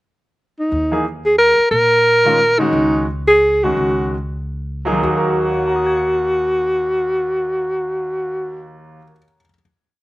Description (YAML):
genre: jazz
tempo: 125-179 BPM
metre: 3/4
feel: swing 62% on 8ths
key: Eb minor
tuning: A4 = 442 Hz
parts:
  - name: mellow alto saxophone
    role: melody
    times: 0.6-8.7 s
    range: Eb4 to Bb4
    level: -15 LUFS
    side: equal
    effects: none
  - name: upright bass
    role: bass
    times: 0.7-9.1 s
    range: Db2 to Bb2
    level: -27 LUFS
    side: equal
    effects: none
  - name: bright grand piano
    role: accompaniment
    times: 0.9-9.6 s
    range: Eb2 to Db7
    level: -22 LUFS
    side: equal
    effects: none
room: light reverb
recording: recorded outdoors, with no room sound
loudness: -14 LUFS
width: side -18 dB against mid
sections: 0.0-0.7 pickup bar; 0.7-5.0 A section; 5.0-7.9 final chord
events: slowing down 2.7-5.0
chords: 0.0 N.C.; 0.7 Ebsus4; 2.7 Dbsus24; 5.0 Ebm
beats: 0.04 0.37 | 0.71 1.04 1.38 | 1.72 2.05 2.39 | 2.73 3.06 3.41 | 3.78 4.16 4.58 | 5.03 5.51 5.99 | 6.47 6.95 7.42